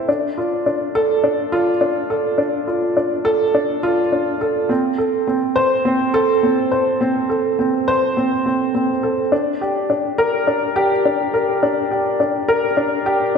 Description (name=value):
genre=electronica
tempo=104 BPM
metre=4/4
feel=straight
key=unclear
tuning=A4 = 440 Hz
part: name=dark upright piano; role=solo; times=0.0-13.4 s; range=C4 to C5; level=-16 LUFS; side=equal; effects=ping-pong delay
room=wet scoring stage reverb, RT60 1.6 s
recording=none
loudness=-16 LUFS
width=side -6 dB against mid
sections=0.0-13.4 A section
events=none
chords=none